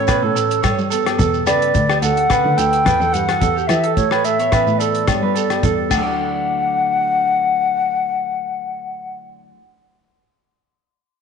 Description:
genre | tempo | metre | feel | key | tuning
highlife guitar band | 108 BPM | 4/4 | straight | D major | A4 = 439 Hz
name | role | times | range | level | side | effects
mellow jazz flute | melody | 0.0-9.2 s | C#5 to G5 | -19 LUFS | left 2 dB | none
mellow electric guitar | accompaniment | 0.0-9.7 s | G2 to A4 | -26 LUFS | left 10 dB | none
electric guitar through a small old amp | arpeggios | 0.0-9.6 s | D4 to D5 | -21 LUFS | right 10 dB | spring reverb, tape echo
dark cello | bass | 0.0-9.2 s | D2 to G3 | -23 LUFS | equal | none
damped 70s drum kit | drums | 0.1-6.0 s | crash cymbal, hi-hat, kick drum, rim click | -24 LUFS | left 2 dB | none
agogo bells | percussion | 0.1-6.3 s | none | -25 LUFS | left 14 dB | none
shekere | percussion | 0.1-6.4 s | none | -27 LUFS | right 7 dB | none
room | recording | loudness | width
moderate echo chamber reverb, RT60 1.8 s, small room reverb | 1960s-style stereo with parts hard left and right, nothing above 10.9 kHz | -15 LUFS | side -6 dB against mid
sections
0.0-6.2 A section; 6.2-8.4 B section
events
none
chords
0.0 Aadd9; 0.6 G; 1.7 D; 2.9 Emadd9; 4.0 Aadd9; 5.1 G; 5.9 Dadd9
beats
0.08 0.64 1.19 | 1.75 2.30 2.85 3.41 | 3.96 4.52 5.07 5.63 | 6.18 6.74 7.29 7.85

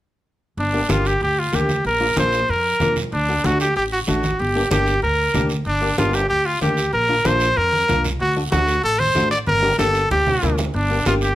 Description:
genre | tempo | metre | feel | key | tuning
latin, cumbia | 189 BPM | 4/4 | straight | G minor | A4 = 440 Hz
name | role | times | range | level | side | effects
bright trumpet | melody | 0.6-11.3 s | D4 to D5 | -19 LUFS | equal | none
upright bass | bass | 0.6-11.3 s | G1 to F2 | -24 LUFS | equal | none
guiro | percussion | 0.6-11.3 s | none | -32 LUFS | right 5 dB | none
nylon-string guitar | accompaniment | 0.7-11.3 s | A3 to G4 | -24 LUFS | left 2 dB | none
congas | percussion | 0.7-11.2 s | none | -26 LUFS | equal | none
room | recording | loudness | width
moderate studio reverb, RT60 0.8 s | none | -17 LUFS | side -14 dB against mid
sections
0.6-10.7 A section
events
drum fill 9.5-10.7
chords
0.6 Gm; 1.8 Bb; 3.1 D; 4.4 Gm; 6.9 Bb; 8.2 D7; 9.5 Gm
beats
| 0.58 0.90 1.21 1.53 | 1.85 2.17 2.48 2.80 | 3.12 3.44 3.76 4.08 | 4.39 4.71 5.03 5.35 | 5.67 5.98 6.30 6.62 | 6.94 7.25 7.57 7.89 | 8.21 8.53 8.84 9.16 | 9.48 9.79 10.11 10.43 | 10.75 11.07

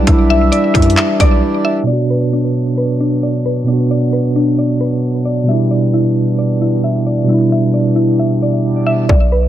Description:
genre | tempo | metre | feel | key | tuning
hip hop, trap | 133 BPM | 4/4 | half-time | unclear | A4 = 440 Hz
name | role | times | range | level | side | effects
mellow tine electric piano | accompaniment | 0.0-9.1 s | B2 to F#4 | -14 LUFS | right 2 dB | medium stereo tremolo
hand-pumped harmonium | sustained chords | 0.0-9.1 s | B2 to D4 | -24 LUFS | equal | none
mallet-like synth pluck | arpeggios | 0.0-9.5 s | D4 to E5 | -18 LUFS | left 3 dB | chorus, low-pass filter, tape echo
hard-hitting 808-style bass | bass | 0.0-1.4, 9.1-9.5 s | B1 to F#2 | -14 LUFS | equal | none
gliding portamento lead | second line | 0.1-1.4 s | D5 to E5 | -23 LUFS | right 4 dB | chorus, tape echo
trap drum kit | drums | 0.1-9.2 s | handclaps, hi-hat, kick drum | -13 LUFS | equal | none
room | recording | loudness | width
light reverb | low-pass filter | -12 LUFS | side -12 dB against mid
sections
0.0-1.9 A section; 1.9-9.1 B section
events
break 1.4-1.9; filter sweep 1.9-9.1; hi-hats muted 9.1-9.5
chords
0.0 Em7/B; 1.9 Bm; 5.5 Em7/B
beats
| 0.07 0.52 0.97 1.43 | 1.88 2.33 2.78 3.23 | 3.68 4.13 4.58 5.03 | 5.49 5.94 6.39 6.84 | 7.29 7.74 8.19 8.64 | 9.09

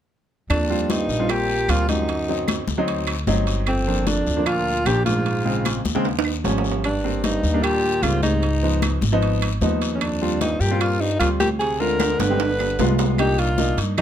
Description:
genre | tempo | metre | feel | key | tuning
Afro-Cuban jazz | 151 BPM | 4/4 | straight | Eb major | A4 = 440 Hz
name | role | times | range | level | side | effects
breathy alto saxophone | melody | 0.5-14.0 s | C4 to Cb5 | -23 LUFS | left 1 dB | none
breathy baritone saxophone | second line | 0.5-14.0 s | F2 to D3 | -28 LUFS | right 5 dB | none
upright bass | bass | 0.5-14.0 s | G1 to G2 | -24 LUFS | equal | none
claves | percussion | 0.5-14.0 s | none | -32 LUFS | right 5 dB | none
congas | percussion | 0.5-14.0 s | none | -28 LUFS | left 3 dB | none
guiro | percussion | 0.5-14.0 s | none | -34 LUFS | left 8 dB | none
timbales | percussion | 0.5-14.0 s | none | -29 LUFS | right 7 dB | none
warm grand piano | accompaniment | 0.7-14.0 s | Db3 to G4 | -25 LUFS | equal | none
room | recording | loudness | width
little or no reverb | close, detailed microphones | -18 LUFS | side -10 dB against mid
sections
0.5-13.2 A section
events
drum fill 6.0-6.8, 12.0-13.2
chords
0.5 Eb69; 2.1 D7b9; 3.7 Gm7; 5.3 Bbm9; 6.0 Eb9; 6.8 Abmaj9; 8.4 Db9; 10.0 Eb69; 11.6 Dm7b5; 12.4 G7b9; 13.2 Cm7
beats
| 0.50 0.90 1.29 1.69 | 2.09 2.48 2.88 3.27 | 3.67 4.07 4.46 4.86 | 5.26 5.65 6.05 6.45 | 6.84 7.24 7.63 8.03 | 8.43 8.82 9.22 9.62 | 10.01 10.41 10.81 11.20 | 11.60 12.00 12.39 12.79 | 13.19 13.58 13.98

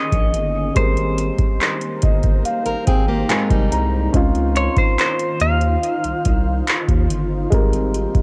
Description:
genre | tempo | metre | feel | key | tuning
contemporary R&B | 71 BPM | 4/4 | straight | Ab major | A4 = 439 Hz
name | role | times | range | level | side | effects
direct-recorded clean electric guitar | melody | 0.0-8.2 s | C5 to F5 | -25 LUFS | equal | subtle chorus, cassette tape, tape echo
dark baby grand piano | accompaniment | 0.0-8.2 s | Ab2 to Bb5 | -26 LUFS | equal | none
glassy FM pad | sustained chords | 0.0-8.2 s | Eb3 to C5 | -30 LUFS | equal | ensemble chorus, built-in reverb
saturated sub bass | bass | 0.1-8.1 s | F1 to Eb2 | -24 LUFS | equal | none
booming analog drum machine | drums | 0.1-8.2 s | handclaps, hi-hat, kick drum | -20 LUFS | equal | overdrive, cassette tape
picked plugged-in steel-string acoustic guitar | arpeggios | 2.7-4.1 s | G3 to Bb4 | -26 LUFS | equal | tape echo
soft synth bell | texture | 4.6-7.5 s | C6 | -38 LUFS | equal | none
room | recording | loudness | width
little or no reverb | home recording on cassette | -18 LUFS | mono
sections
0.0-8.2 A section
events
grand piano fill 1.6-4.1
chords
0.0 Eb7sus4; 0.8 Abmaj9; 4.1 Dbmaj9; 7.5 Abmaj9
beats
| 0.76 1.60 2.45 3.29 | 4.14 4.99 5.83 6.67 | 7.52

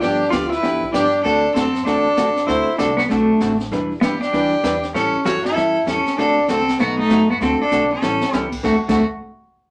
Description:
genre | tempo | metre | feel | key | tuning
country, western swing | 195 BPM | 4/4 | swing 62% on 8ths | D mixolydian | A4 = 440 Hz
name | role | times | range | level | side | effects
pedal steel guitar | melody | 0.0-9.0 s | A3 to F#4 | -21 LUFS | equal | none
clear fiddle | second line | 0.0-9.0 s | D4 to D5 | -26 LUFS | equal | none
vintage hollow-body jazz guitar | accompaniment | 0.0-9.0 s | B2 to B4 | -25 LUFS | equal | none
upright bass | bass | 0.0-9.0 s | E1 to A2 | -37 LUFS | equal | none
jazz brush drum kit | drums | 0.0-8.9 s | brushed snare drum, crash cymbal, hi-hat, kick drum, snare drum | -30 LUFS | equal | none
room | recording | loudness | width
moderate small room ambience, RT60 0.5 s | none | -18 LUFS | mono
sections
0.0-8.6 A section; 8.6-9.7 B section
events
drum fill 7.7-8.3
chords
0.0 G7; 1.2 D7; 3.7 Em7; 4.9 A7; 6.2 D7; 6.8 B7; 7.4 D7; 8.0 A7; 8.6 D7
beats
| 0.01 0.32 0.63 0.94 | 1.25 1.56 1.86 2.17 | 2.48 2.79 3.10 3.40 | 3.71 4.02 4.33 4.64 | 4.94 5.25 5.56 5.87 | 6.18 6.49 6.79 7.10 | 7.41 7.72 8.03 8.33 | 8.64 8.95

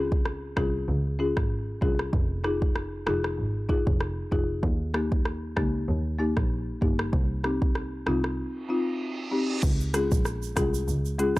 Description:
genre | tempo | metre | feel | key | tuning
dancehall | 96 BPM | 4/4 | swing 56% on 16ths | unclear | A4 = 440 Hz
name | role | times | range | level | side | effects
folk marimba with medium mallets | accompaniment | 0.0-11.3 s | Ab3 to Ab4 | -29 LUFS | left 2 dB | none
rich double bass | bass | 0.0-11.4 s | F1 to Eb2 | -30 LUFS | equal | none
afro-pop drum kit | drums | 0.1-11.4 s | crash cymbal, hi-hat, kick drum, rim click, shaker | -27 LUFS | equal | none
reverse cymbal | sound effects | 8.6-9.6 s | none | -37 LUFS | right 5 dB | none
tube shaker | percussion | 9.6-11.4 s | none | -43 LUFS | right 13 dB | none
room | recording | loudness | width
small room ambience | dark, warm production | -24 LUFS | side -19 dB against mid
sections
0.0-9.6 A section; 9.6-11.4 B section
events
break 8.4-9.6; reverse cymbal 8.6-9.6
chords
0.0 Db; 2.1 Fm7; 4.6 Eb; 7.1 Cm; 9.6 Db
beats
0.26 0.88 1.50 | 2.13 2.75 3.38 4.00 | 4.63 5.25 5.88 6.50 | 7.13 7.75 8.38 9.01 | 9.63 10.26 10.88

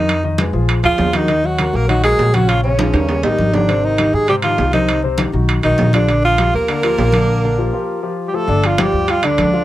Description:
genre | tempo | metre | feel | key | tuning
Afro-Cuban jazz | 200 BPM | 4/4 | straight | Bb major | A4 = 439 Hz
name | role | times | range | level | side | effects
breathy alto saxophone | melody | 0.0-9.6 s | Db4 to Bb4 | -17 LUFS | right 1 dB | none
mellow tenor saxophone | second line | 0.0-9.6 s | Db3 to Bb3 | -25 LUFS | right 4 dB | none
warm grand piano | accompaniment | 0.0-9.6 s | C3 to G5 | -21 LUFS | left 4 dB | none
upright bass | bass | 0.0-9.6 s | G1 to Ab2 | -18 LUFS | equal | none
congas | percussion | 0.1-9.6 s | none | -22 LUFS | equal | none
timbales | percussion | 0.1-9.5 s | none | -22 LUFS | right 4 dB | none
room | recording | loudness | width
light reverb | close, detailed microphones | -13 LUFS | side -14 dB against mid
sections
0.0-8.5 A section; 8.5-9.6 B section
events
drum fill 2.8-3.7; break 7.3-8.5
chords
0.1 Fm7b5; 0.7 Bb7; 1.3 Ebm7; 2.5 Bbm7; 3.1 Eb; 3.7 Abmaj7; 4.9 Cm; 5.5 B; 6.1 Bb6; 8.5 G5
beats
| 0.09 0.39 0.69 0.99 | 1.29 1.59 1.89 2.19 | 2.49 2.79 3.09 3.39 | 3.69 3.99 4.29 4.59 | 4.89 5.19 5.49 5.79 | 6.08 6.38 6.68 6.98 | 7.28 7.58 7.88 8.18 | 8.48 8.78 9.08 9.38

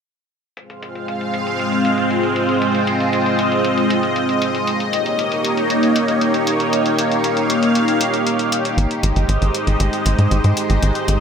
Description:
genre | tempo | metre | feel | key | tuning
synthwave | 117 BPM | 4/4 | straight | F minor | A4 = 440 Hz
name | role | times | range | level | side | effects
lush unison pad | sustained chords | 0.6-11.2 s | Ab3 to F5 | -16 LUFS | equal | chorus, phaser
electronic hi-hat | drums | 0.6-11.2 s | none | -27 LUFS | left 2 dB | overdrive, low-pass filter on hats, low-pass filter on room
tight sequencer bass | bass | 8.8-11.2 s | Ab1 to Ab2 | -16 LUFS | equal | none
room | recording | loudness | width
moderate lush hall reverb, RT60 2.5 s | none | -15 LUFS | side -7 dB against mid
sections
0.6-11.2 A section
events
none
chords
0.6 Fm; 4.7 Eb7; 8.8 Abmaj7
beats
| 0.57 1.08 1.60 2.11 | 2.62 3.13 3.65 4.16 | 4.67 5.19 5.70 6.21 | 6.72 7.24 7.75 8.26 | 8.78 9.29 9.80 10.31 | 10.83

